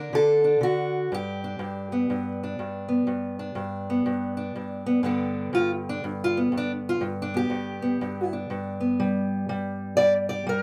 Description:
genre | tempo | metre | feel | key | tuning
acoustic country blues, solo or duo | 122 BPM | 4/4 | swing 63% on 8ths | G major | A4 = 440 Hz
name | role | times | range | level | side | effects
fingerpicked steel-string acoustic guitar | solo | 0.0-10.6 s | G2 to D5 | -26 LUFS | equal | none
room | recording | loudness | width
light reverb | rough home demo mix | -26 LUFS | mono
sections
0.0-5.0 A section; 5.0-10.6 B section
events
steel-string acoustic guitar solo 5.0-10.6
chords
0.0 D; 1.1 G

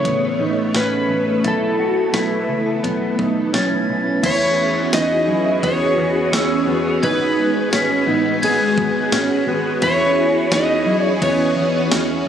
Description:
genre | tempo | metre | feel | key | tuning
dream pop | 86 BPM | 4/4 | straight | E major | A4 = 442 Hz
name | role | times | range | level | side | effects
electric slide guitar | melody | 0.0-12.3 s | G#4 to D#5 | -21 LUFS | equal | ping-pong delay, shimmer reverb
phased string machine | sustained chords | 0.0-12.3 s | C#3 to G#4 | -21 LUFS | equal | ensemble chorus, phaser, shimmer reverb
mellow electric guitar | arpeggios | 0.0-12.3 s | B3 to F#4 | -22 LUFS | equal | analog chorus, ping-pong delay, shimmer reverb
glockenspiel with soft plastic mallets | texture | 0.0-11.6 s | E6 to B6 | -26 LUFS | left 1 dB | ping-pong delay, shimmer reverb
vintage muted picked electric bass | bass | 0.1-12.3 s | G#1 to F#2 | -27 LUFS | equal | none
crisp 8-bit digital drum machine | drums | 0.1-12.1 s | crash cymbal, hi-hat, kick drum, ride cymbal, snare drum, tambourine | -24 LUFS | equal | none
room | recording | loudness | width
moderate lush hall reverb, RT60 3.2 s | recorded on a phone in the room, club reverb | -15 LUFS | side -8 dB against mid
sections
0.0-4.2 A section; 4.2-12.3 B section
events
none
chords
0.0 Aadd9; 1.4 B7sus4; 4.2 E6; 7.0 G#m7; 9.8 E6

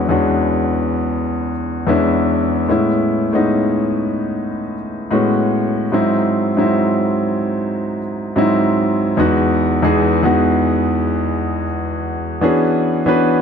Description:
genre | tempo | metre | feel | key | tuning
R&B | 74 BPM | 4/4 | swing 60% on 16ths | E major | A4 = 441 Hz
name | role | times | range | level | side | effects
warm concert grand piano | solo | 0.0-13.4 s | E2 to B4 | -15 LUFS | equal | none
room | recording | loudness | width
light reverb | none | -15 LUFS | side -7 dB against mid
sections
0.0-9.2 A section; 9.2-13.4 B section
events
none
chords
0.0 E13; 2.7 Amaj9; 5.9 G#7b13; 9.2 Emaj7; 12.4 E13

